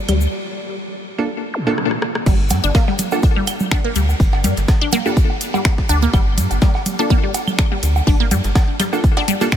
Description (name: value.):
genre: minimal techno.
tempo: 124 BPM.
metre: 4/4.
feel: swing 54% on 16ths.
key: G minor.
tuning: A4 = 441 Hz.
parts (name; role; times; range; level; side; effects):
resonant blip pluck; riff; 0.1-9.6 s; D3 to D4; -22 LUFS; left 2 dB; phaser, sidechain pumping, tape echo.
rubbery square bass; bass; 0.1-8.5 s; G1 to G2; -17 LUFS; equal; sidechain pumping.
breakbeat sampler-style drum kit; drums; 0.1-9.6 s; hi-hat, ride cymbal, snare drum; -33 LUFS; right 1 dB; none.
house drum kit; drums; 0.1-9.6 s; crash cymbal, finger snaps, hi-hat, rim click; -26 LUFS; equal; small room ambience.
congas, claves and woodblock; percussion; 0.1-9.6 s; none; -25 LUFS; right 3 dB; small room ambience, ping-pong delay.
egg shaker; percussion; 0.2-9.6 s; none; -33 LUFS; left 5 dB; none.
wavetable chord stab; stabs; 1.2-9.5 s; Bb3 to A4; -25 LUFS; right 2 dB; ping-pong delay.
zap; sound effects; 1.5-1.7 s; none; -28 LUFS; equal; none.
electronic kick drum; drums; 2.3-9.6 s; none; -15 LUFS; equal; small room ambience.
room: light reverb.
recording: none.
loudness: -15 LUFS.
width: side -10 dB against mid.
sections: 0.0-2.3 A section; 2.3-9.6 B section.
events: break 0.3-2.3; drum fill 1.8-2.3; drop 2.3-9.6.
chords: 0.0 N.C.; 2.3 G5.